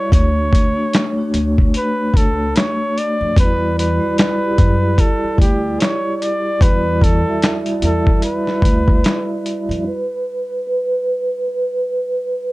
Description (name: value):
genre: lo-fi hip hop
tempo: 74 BPM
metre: 4/4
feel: swing 60% on 16ths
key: E dorian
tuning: A4 = 445 Hz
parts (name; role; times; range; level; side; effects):
- breathy flugelhorn; melody; 0.0-9.4 s; G4 to D5; -21 LUFS; equal; low-pass filter, tape echo
- vibraphone with soft mallets; accompaniment; 0.0-12.5 s; G3 to E5; -20 LUFS; right 1 dB; cassette tape, low-pass filter
- upright bass; bass; 0.1-9.8 s; C#2 to F#2; -19 LUFS; equal; none
- dusty soul sampler-style drum kit; drums; 0.1-9.9 s; handclaps, hi-hat, kick drum, snare drum; -15 LUFS; equal; none
room: light reverb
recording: none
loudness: -14 LUFS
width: side -20 dB against mid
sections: 0.0-9.8 A section; 9.8-12.5 B section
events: vibraphone solo 9.8-12.5; filter sweep on vibraphone 9.8-12.5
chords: 0.1 Dmaj7; 3.4 Em9; 9.8 N.C.